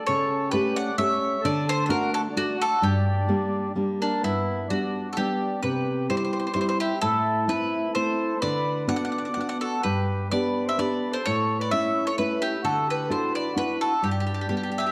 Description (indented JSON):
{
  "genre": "italian folk, Italian serenade",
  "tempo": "129 BPM",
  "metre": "3/4",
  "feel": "rubato",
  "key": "G harmonic minor, G major from 4.2 s",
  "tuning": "A4 = 440 Hz",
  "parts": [
    { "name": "bowl-back mandolin", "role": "melody", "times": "0.0-14.9 s", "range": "D4 to F#5", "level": "-29 LUFS", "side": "equal", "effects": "none" },
    { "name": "mellow accordion", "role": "second line", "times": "0.0-14.9 s", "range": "Bb3 to D5", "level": "-34 LUFS", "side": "equal", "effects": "none" },
    { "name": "nylon-string guitar", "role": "accompaniment", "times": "0.1-14.9 s", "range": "G2 to G4", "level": "-29 LUFS", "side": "equal", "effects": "none" }
  ],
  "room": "wet recital hall reverb, RT60 1.5 s",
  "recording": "dark, warm production",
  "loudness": "-25 LUFS",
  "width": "mono",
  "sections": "0.0-4.2 A section; 4.2-14.9 B section",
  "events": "none",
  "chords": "0.1 A7/C#; 1.4 D; 2.8 Gm; 4.2 G; 5.6 C; 7.0 Am; 8.4 D6; 9.9 G; 11.3 A; 12.6 Dadd9; 14.0 G",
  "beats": "| 0.08 0.53 0.99 | 1.45 1.90 2.36 | 2.83 3.30 3.77 | 4.24 4.71 5.18 | 5.65 6.11 6.57 | 7.03 7.50 7.96 | 8.43 8.90 9.38 | 9.85 10.32 10.79 | 11.26 11.72 12.18 | 12.64 13.11 13.56 | 14.03 14.50"
}